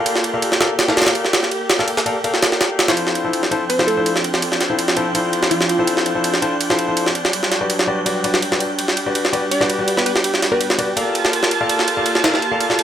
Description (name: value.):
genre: drum and bass, jungle.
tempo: 165 BPM.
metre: 4/4.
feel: straight.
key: unclear.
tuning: A4 = 436 Hz.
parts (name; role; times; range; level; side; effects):
rich studio string section; sustained chords; 0.0-12.8 s; F3 to A5; -23 LUFS; right 2 dB; low-pass filter.
clear concert grand piano; stabs; 0.0-12.8 s; E4 to F5; -22 LUFS; left 3 dB; vintage 12-bit sampler grit, low-pass filter, dub echo.
wind-like tuned noise texture; texture; 0.0-12.8 s; G5 to G6; -30 LUFS; left 1 dB; built-in reverb.
jungle sampler-style drum kit; drums; 0.1-12.8 s; ride cymbal, snare drum; -18 LUFS; right 1 dB; high-pass filter on cymbals, high-pass filter on snare.
plucky unison lead; melody; 3.7-5.8, 9.5-10.8 s; F4 to D5; -23 LUFS; equal; dub echo.
room: moderate plate reverb, RT60 1.9 s, studio reverb.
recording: none.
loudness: -15 LUFS.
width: side -10 dB against mid.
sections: 0.0-12.8 A section.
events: filter sweep on string section 0.0-12.8.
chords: 0.0 Gm9; 3.0 Dm9; 7.3 Gmaj7/F#; 11.0 Gm9.